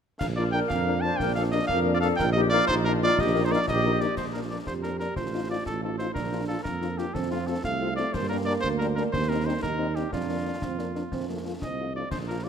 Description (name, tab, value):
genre	military-style march for wind band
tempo	121 BPM (dotted quarters)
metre	6/8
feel	straight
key	Bb major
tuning	A4 = 441 Hz
part	warm cornet	melody	0.2-12.5 s	F4 to A5	-30 LUFS	right 1 dB	none
part	mellow hollow small flute group	second line	0.2-4.1 s	D4 to C5	-28 LUFS	left 4 dB	none
part	warm trombone section	sustained chords	0.2-4.0 s	Bb2 to Eb4	-35 LUFS	right 2 dB	none
part	mellow tuba	bass	0.2-12.5 s	A1 to G2	-29 LUFS	right 3 dB	none
part	concert snare drum, clash cymbals and concert bass drum	drums	0.2-12.5 s	none	-37 LUFS	left 2 dB	none
part	mellow French horn section	accompaniment	0.4-12.5 s	Eb3 to F4	-34 LUFS	left 7 dB	none
part	mellow euphonium	second line	4.7-12.5 s	A3 to G4	-34 LUFS	right 6 dB	none
room	moderate concert hall reverb, RT60 2.1 s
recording	none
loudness	-24 LUFS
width	side -7 dB against mid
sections	0.2-4.2 A section; 4.2-12.5 B section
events	none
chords	0.2 Bb; 2.2 Eb/Bb; 4.2 Bb; 5.2 F7/A; 6.2 Bb; 7.1 F; 8.1 Gm; 9.1 Cm7/Eb; 10.1 Bb/F; 11.1 F